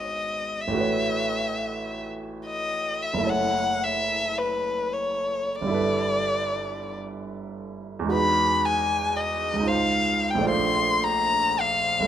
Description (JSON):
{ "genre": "classical, impressionist duo for violin and grand piano", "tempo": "74 BPM", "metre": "3/4", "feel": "uneven beats, rubato", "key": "unclear", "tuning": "A4 = 440 Hz", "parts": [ { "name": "warm violin", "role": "melody", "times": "0.0-12.1 s", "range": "B4 to B#5", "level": "-24 LUFS", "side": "left 2 dB", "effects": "none" }, { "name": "clear baby grand piano", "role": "accompaniment", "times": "0.0-12.1 s", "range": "F#1 to D#5", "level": "-27 LUFS", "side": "right 3 dB", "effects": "none" } ], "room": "moderate recital hall reverb, RT60 1.6 s", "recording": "close, detailed microphones", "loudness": "-22 LUFS", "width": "side -10 dB against mid", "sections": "0.0-12.1 A section", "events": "none", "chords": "0.0 G#m7; 0.8 A69; 3.3 F#m7; 5.8 G69; 8.1 Emaj9; 9.7 C#maj9; 10.5 A#maj9", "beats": "| 0.83 1.65 2.48 | 3.29 4.12 4.93 | 5.76 6.58 7.35 | 8.14 8.91 9.70 | 10.51 11.33" }